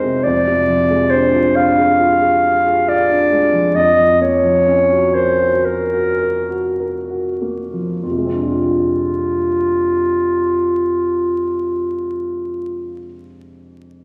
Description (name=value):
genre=classical, impressionist duo for clarinet and grand piano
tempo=47-72 BPM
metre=4/4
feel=rubato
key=F dorian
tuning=A4 = 439 Hz
part: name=mellow clarinet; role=melody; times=0.0-13.0 s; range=F4 to F5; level=-17 LUFS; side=equal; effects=none
part: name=warm grand piano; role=accompaniment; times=0.0-14.0 s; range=F2 to Bb4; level=-22 LUFS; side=equal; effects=none
room=wet concert hall reverb, RT60 1.8 s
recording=vinyl crackle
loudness=-16 LUFS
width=mono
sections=0.2-8.0 A section; 8.0-12.8 B section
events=slowing down 0.0-8.0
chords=0.2 Fm6; 3.8 Gbmaj7/F; 8.0 Fm6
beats=| 0.24 1.11 2.01 2.88 | 3.75 4.67 5.66 6.79 | 8.03 9.23 10.42 11.61